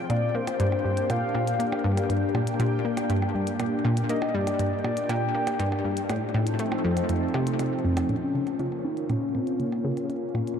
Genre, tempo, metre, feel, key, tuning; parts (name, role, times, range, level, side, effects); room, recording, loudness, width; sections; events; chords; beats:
ambient, sequencer-driven space music; 120 BPM; 4/4; straight; A4 = 442 Hz
phased analog pad; sustained chords; 0.0-10.6 s; F3 to A4; -30 LUFS; left 1 dB; phaser, chorus
bubbling stepped-filter texture; texture; 0.0-8.1 s; G5; -41 LUFS; equal; chorus, built-in reverb
soft octave-layered synth lead; melody; 0.1-10.0 s; Bb3 to G5; -30 LUFS; left 2 dB; chorus, ping-pong delay
analog pluck; riff; 0.1-10.5 s; F2 to Db4; -27 LUFS; equal; chorus, ping-pong delay
electronic hi-hat and percussion blips; percussion; 0.1-10.6 s; -38 LUFS; right 2 dB; ping-pong delay
moderate huge ambient reverb, RT60 8.1 s; dark, warm production; -24 LUFS; side -7 dB against mid
0.0-8.1 A section; 8.1-10.6 B section
filter sweep on synth arpeggio sound 8.1-10.6
0.1 Gm; 6.1 F7; 8.1 Bbm
| 0.10 0.60 1.10 1.60 | 2.10 2.60 3.10 3.60 | 4.10 4.60 5.10 5.60 | 6.10 6.60 7.10 7.60 | 8.10 8.60 9.10 9.60 | 10.10